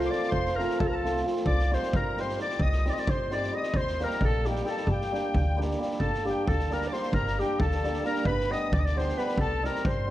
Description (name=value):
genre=balkan folk, Balkan wedding band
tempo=265 BPM (eighths)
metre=5/8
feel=straight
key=G minor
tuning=A4 = 442 Hz
part: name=mellow clarinet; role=melody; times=0.0-10.1 s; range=G4 to Eb5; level=-31 LUFS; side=equal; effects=none
part: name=musette accordion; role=second line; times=0.0-10.1 s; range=G5 to Eb6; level=-36 LUFS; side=left 4 dB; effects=none
part: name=hammered dulcimer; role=accompaniment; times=0.0-10.1 s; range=F3 to G4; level=-31 LUFS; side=right 1 dB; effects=none
part: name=upright bass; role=bass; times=0.0-10.1 s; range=F1 to G2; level=-30 LUFS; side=equal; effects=none
part: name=street-band drum kit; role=percussion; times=0.0-10.0 s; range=kick drum, snare drum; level=-32 LUFS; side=equal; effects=none
room=moderate recital hall reverb, RT60 1.4 s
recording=none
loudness=-25 LUFS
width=side -14 dB against mid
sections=0.0-6.0 A section; 6.0-10.1 B section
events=none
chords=0.0 F; 1.5 Cm; 3.7 Eb; 4.9 Gm; 8.3 G; 9.4 Cm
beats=0.11 | 0.33 0.56 0.79 1.01 1.24 | 1.47 1.70 1.92 2.15 2.38 | 2.60 2.83 3.06 3.28 3.51 | 3.74 3.96 4.19 4.42 4.64 | 4.87 5.09 5.32 5.55 5.77 | 6.00 6.22 6.45 6.68 6.90 | 7.13 7.35 7.58 7.80 8.03 | 8.26 8.48 8.71 8.93 9.16 | 9.38 9.61 9.83 10.06